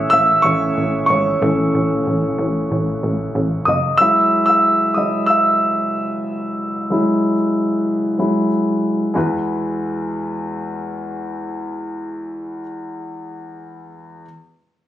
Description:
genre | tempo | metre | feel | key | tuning
pop | 93 BPM | 4/4 | straight | E major | A4 = 439 Hz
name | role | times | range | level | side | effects
warm grand piano | accompaniment | 0.0-14.3 s | E2 to E6 | -17 LUFS | equal | none
plucky analog bass | bass | 0.0-3.9 s | F#1 to A1 | -22 LUFS | right 1 dB | none
room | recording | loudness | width
light reverb, small room ambience | recorded on a phone in the room, club reverb, compression | -16 LUFS | side -12 dB against mid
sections
0.0-9.2 A section; 9.2-11.7 B section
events
grand piano solo 0.0-9.2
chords
0.0 A; 4.0 Eadd9

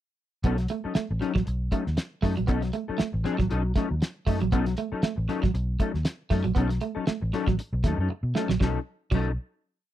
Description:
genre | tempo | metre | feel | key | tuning
funk | 118 BPM | 4/4 | swing 56% on 16ths | B mixolydian | A4 = 440 Hz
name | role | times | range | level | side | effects
mellow electric guitar | accompaniment | 0.4-9.3 s | F#3 to A4 | -30 LUFS | left 5 dB | ensemble chorus
electric guitar at the edge of break-up | riff | 0.4-9.3 s | F#3 to B3 | -30 LUFS | right 7 dB | none
vintage muted fingered electric bass | bass | 0.4-9.4 s | A1 to B2 | -28 LUFS | equal | none
cloth-damped thuddy drum kit | drums | 0.4-9.3 s | crash cymbal, hi-hat, kick drum, snare drum | -26 LUFS | equal | none
room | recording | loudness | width
little or no reverb | dry, close 1970s-style studio recording | -24 LUFS | side -12 dB against mid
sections
0.4-8.6 A section; 8.6-9.9 final chord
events
drum fill 8.1-8.6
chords
0.4 B9

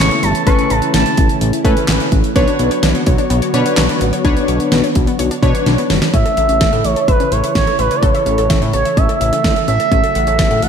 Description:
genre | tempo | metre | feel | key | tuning
synth-pop | 127 BPM | 4/4 | straight | unclear | A4 = 440 Hz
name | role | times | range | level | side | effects
expressive portamento lead | melody | 0.0-1.4, 6.1-10.7 s | B4 to C#6 | -16 LUFS | right 3 dB | chorus, slapback echo
funky polysynth comp | accompaniment | 0.0-5.9 s | C#4 to C#5 | -19 LUFS | left 2 dB | chorus, slapback echo
brassy analog pad | sustained chords | 0.0-10.7 s | C#3 to C#5 | -21 LUFS | left 1 dB | chorus
fat analog bass | bass | 0.0-10.7 s | G1 to B2 | -18 LUFS | equal | none
pop drum kit | drums | 0.0-10.7 s | handclaps, hi-hat, kick drum, snare drum | -16 LUFS | equal | none
analog pluck | arpeggios | 2.4-10.6 s | B3 to F#5 | -23 LUFS | left 5 dB | chorus, slapback echo
room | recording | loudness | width
moderate lush hall reverb, RT60 2.0 s | big arena sound | -12 LUFS | side -7 dB against mid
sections
0.0-6.1 A section; 6.1-10.7 B section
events
drum fill 5.7-6.1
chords
0.0 Aadd9; 2.4 Bmadd9; 6.1 A; 9.9 F#m/A

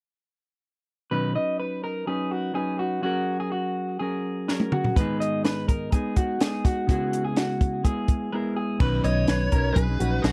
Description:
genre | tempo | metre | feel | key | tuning
jangly indie pop | 125 BPM | 4/4 | straight | B major | A4 = 440 Hz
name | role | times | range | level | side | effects
mellow electric guitar | accompaniment | 1.1-10.3 s | G#2 to B4 | -30 LUFS | equal | warbly pitch drift
electric guitar through a small old amp | arpeggios | 1.1-10.3 s | F#4 to D#5 | -32 LUFS | equal | subtle chorus
compact cocktail drum kit | drums | 4.5-10.3 s | crash cymbal, hi-hat, kick drum, snare drum, toms | -26 LUFS | equal | none
vintage muted fingered electric bass | bass | 8.8-10.3 s | A#1 to B1 | -27 LUFS | equal | none
fuzz lead guitar | melody | 9.0-10.3 s | F#4 to C#5 | -32 LUFS | equal | distortion
room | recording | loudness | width
light reverb | dry, close 1970s-style studio recording | -25 LUFS | mono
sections
1.1-8.8 A section; 8.8-10.3 B section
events
drum fill 4.5-5.0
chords
1.1 Badd9; 3.0 F#add9; 5.0 G#m; 6.9 C#m7; 8.8 Badd9

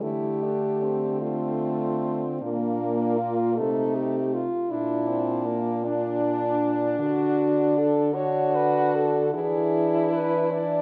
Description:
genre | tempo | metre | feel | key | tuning
classical, lyrical piece for horn quartet | 51 BPM (dotted quarters) | 6/8 | uneven beats, rubato | unclear | A4 = 440 Hz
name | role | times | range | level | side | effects
warm French horn | melody | 0.0-10.8 s | D4 to D5 | -29 LUFS | equal | none
clear French horn | second line | 0.0-10.8 s | A3 to F#4 | -31 LUFS | equal | none
warm French horn | accompaniment | 0.0-10.8 s | A3 to Eb4 | -32 LUFS | equal | none
mellow French horn | bass | 0.0-10.8 s | Bb2 to E3 | -32 LUFS | equal | none
room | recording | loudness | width
moderate recital hall reverb, RT60 1.4 s | none | -25 LUFS | mono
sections
0.0-10.8 A section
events
none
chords
0.0 Dm; 2.4 Bb; 3.6 Adim/C; 4.7 Bb; 7.0 D; 9.3 E7

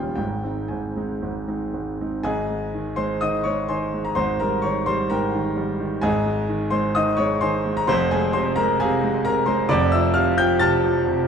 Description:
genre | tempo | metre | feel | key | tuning
classical, virtuoso piano study | 113-135 BPM | 4/4 | rubato | Ab major | A4 = 442 Hz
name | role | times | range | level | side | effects
clear concert grand piano | solo | 0.0-11.3 s | Eb1 to A6 | -20 LUFS | equal | none
room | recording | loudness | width
wet recital hall reverb, RT60 1.6 s | dark, warm production | -20 LUFS | side -7 dB against mid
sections
0.0-2.3 A section; 2.3-11.3 B section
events
none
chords
0.2 Ab; 4.2 Eb7/Ab; 6.0 Ab; 7.9 Fm; 9.7 Fmaj7

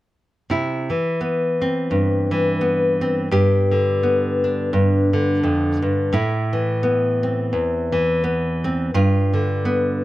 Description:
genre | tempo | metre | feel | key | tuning
folk, solo fingerstyle acoustic guitar | 85 BPM | 4/4 | swing 57% on 8ths | unclear | A4 = 440 Hz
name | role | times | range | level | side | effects
nylon-string guitar | solo | 0.5-10.0 s | E2 to G4 | -17 LUFS | equal | none
room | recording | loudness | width
little or no reverb | close, detailed microphones | -17 LUFS | side -16 dB against mid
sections
0.5-10.0 A section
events
none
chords
0.5 Cmaj7; 3.3 G; 6.1 Amadd9; 8.9 G7

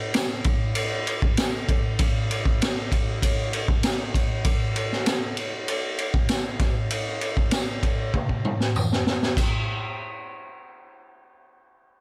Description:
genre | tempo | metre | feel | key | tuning
rock | 98 BPM | 4/4 | straight | none | none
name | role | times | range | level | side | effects
raw garage drum kit | drums | 0.1-9.5 s | crash cymbal, kick drum, ride cymbal, snare drum, toms | -25 LUFS | equal | none
tambourine | percussion | 0.2-9.7 s | none | -42 LUFS | equal | none
room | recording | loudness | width
little or no reverb | none | -25 LUFS | mono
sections
0.0-9.4 A section; 9.4-11.8 B section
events
drum fill 8.1-9.4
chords
none

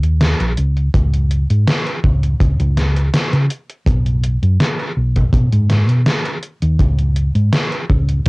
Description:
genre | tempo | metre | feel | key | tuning
vaporwave | 82 BPM | 4/4 | straight | unclear | A4 = 441 Hz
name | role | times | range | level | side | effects
hollow-body short-scale fingered electric bass | bass | 0.0-8.3 s | A#1 to C#3 | -14 LUFS | equal | none
gated 80s digital drum machine | drums | 0.0-8.3 s | hi-hat, snare drum | -18 LUFS | equal | gated reverb, gated reverb snare
kick drum | drums | 0.9-8.3 s | none | -18 LUFS | equal | none
room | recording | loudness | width
little or no reverb | home recording on cassette | -14 LUFS | side -27 dB against mid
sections
0.0-8.3 A section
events
none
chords
none

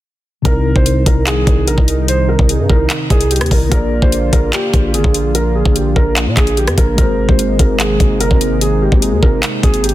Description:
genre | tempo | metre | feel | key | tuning
hip hop, trap | 147 BPM | 4/4 | half-time | C minor | A4 = 440 Hz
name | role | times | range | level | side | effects
mellow tine electric piano | accompaniment | 0.4-9.9 s | C3 to D5 | -22 LUFS | left 4 dB | medium stereo tremolo
dark concert grand piano | melody | 0.5-9.9 s | G4 to C5 | -19 LUFS | right 2 dB | digital delay
warm analog pad | sustained chords | 0.5-9.9 s | C3 to F4 | -22 LUFS | right 1 dB | chorus
growling 808-style bass | bass | 0.5-9.9 s | G1 to Bb2 | -17 LUFS | equal | none
trap drum kit | drums | 0.5-9.9 s | handclaps, hi-hat, kick drum, rim click | -13 LUFS | equal | none
room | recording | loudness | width
little or no reverb | dense, heavily limited modern master | -11 LUFS | side -15 dB against mid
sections
0.5-9.9 A section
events
none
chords
0.5 Cm; 3.7 Bb6; 7.0 Abadd9

